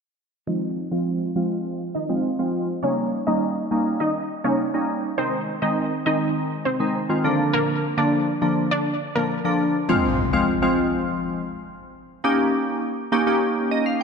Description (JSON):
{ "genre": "pop", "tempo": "102 BPM", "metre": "4/4", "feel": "straight", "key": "F dorian", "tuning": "A4 = 440 Hz", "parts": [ { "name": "wide unison pluck", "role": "melody", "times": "0.5-9.3 s", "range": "Bb3 to F5", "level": "-26 LUFS", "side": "equal", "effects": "low-pass filter, digital delay" }, { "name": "glassy digital keys", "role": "accompaniment", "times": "0.5-14.0 s", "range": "D3 to F5", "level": "-21 LUFS", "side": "equal", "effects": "chorus, low-pass filter" }, { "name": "impact", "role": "sound effects", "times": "9.9-12.2 s", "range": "none", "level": "-28 LUFS", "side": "left 1 dB", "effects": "none" } ], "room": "moderate lush hall reverb, RT60 2.8 s", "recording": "dark, warm production", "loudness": "-20 LUFS", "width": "side -5 dB against mid", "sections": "0.5-9.9 A section; 9.9-14.0 B section", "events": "filter sweep 0.5-9.9; impact 9.9-12.2; synth keys fill 13.4-14.0", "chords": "0.5 Fm; 2.8 Eb7; 5.2 Ab; 7.2 Bb; 9.9 Fm; 12.2 Eb7" }